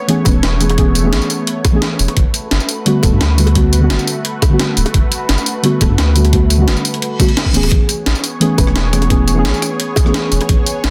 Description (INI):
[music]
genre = liquid drum and bass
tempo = 173 BPM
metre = 4/4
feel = straight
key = A major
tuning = A4 = 440 Hz
[part]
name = deep mellow chord stab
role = accompaniment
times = 0.0-10.9 s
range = D3 to B4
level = -19 LUFS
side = equal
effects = chorus, delay
[part]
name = lush unison pad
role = sustained chords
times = 0.0-10.9 s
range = A3 to C#5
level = -27 LUFS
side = equal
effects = chorus, phaser, sidechain pumping
[part]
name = breakbeat sampler-style drum kit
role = drums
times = 0.1-10.9 s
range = hi-hat, rim click, snare drum, tambourine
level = -21 LUFS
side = equal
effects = none
[part]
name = saturated sub bass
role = bass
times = 0.3-10.9 s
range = D1 to G2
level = -17 LUFS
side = equal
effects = none
[part]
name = electronic kick drum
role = drums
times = 0.3-10.6 s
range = none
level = -17 LUFS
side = equal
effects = none
[part]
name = bongos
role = percussion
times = 0.3-10.5 s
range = none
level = -24 LUFS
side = equal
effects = none
[part]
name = reverse cymbal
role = sound effects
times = 7.1-7.7 s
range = none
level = -26 LUFS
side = equal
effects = none
[sound]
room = light reverb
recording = dense, heavily limited modern master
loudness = -14 LUFS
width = mono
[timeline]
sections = 0.0-10.9 A section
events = filter sweep on synth stab 0.0-10.9; reverse cymbal 7.1-7.7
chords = 0.0 Amaj9; 2.2 Gmaj9; 7.7 Amaj9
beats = 0.09 0.43 | 0.78 1.13 1.47 1.82 | 2.17 2.51 2.86 3.21 | 3.56 3.90 4.25 4.59 | 4.94 5.29 5.64 5.98 | 6.33 6.68 7.02 7.37 | 7.72 8.06 8.41 8.76 | 9.10 9.45 9.80 10.14 | 10.49 10.84